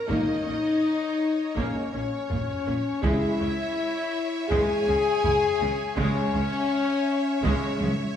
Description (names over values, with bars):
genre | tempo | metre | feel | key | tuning
cinematic, epic orchestral film score | 82 BPM | 4/4 | straight | unclear | A4 = 440 Hz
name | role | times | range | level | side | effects
clear symphonic violin section | melody | 0.0-7.8 s | Db5 to Ab5 | -36 LUFS | left 3 dB | none
mellow hollow silver concert flute | second line | 0.0-7.8 s | Db5 to Ab5 | -36 LUFS | left 4 dB | none
rich studio violin section | second line | 0.0-8.2 s | Db5 to Fb5 | -37 LUFS | left 2 dB | none
warm French horn section | sustained chords | 0.0-7.8 s | Db4 to Ab4 | -26 LUFS | left 3 dB | none
dark trumpet section | stabs | 0.0-7.8 s | Db4 to Ab4 | -32 LUFS | left 2 dB | none
clear symphonic viola section | accompaniment | 0.1-7.9 s | Ab3 to F4 | -32 LUFS | right 1 dB | none
mellow trombone section | sustained chords | 0.1-7.7 s | Db3 to Bb3 | -38 LUFS | right 2 dB | none
clear symphonic cello section | bass | 0.1-7.9 s | Bb2 to Db3 | -34 LUFS | right 2 dB | none
rich symphonic double bass section | bass | 0.1-7.9 s | Bb1 to Db2 | -33 LUFS | right 2 dB | none
taiko ensemble | drums | 0.1-8.2 s | none | -32 LUFS | right 1 dB | none
room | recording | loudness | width
wet scoring stage reverb, RT60 1.9 s | none | -23 LUFS | side -9 dB against mid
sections
0.0-8.2 A section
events
drum fill 7.8-8.2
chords
0.0 Bbm; 3.0 Dbm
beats
| 0.09 0.83 1.57 2.31 | 3.04 3.78 4.51 5.25 | 5.98 6.71 7.44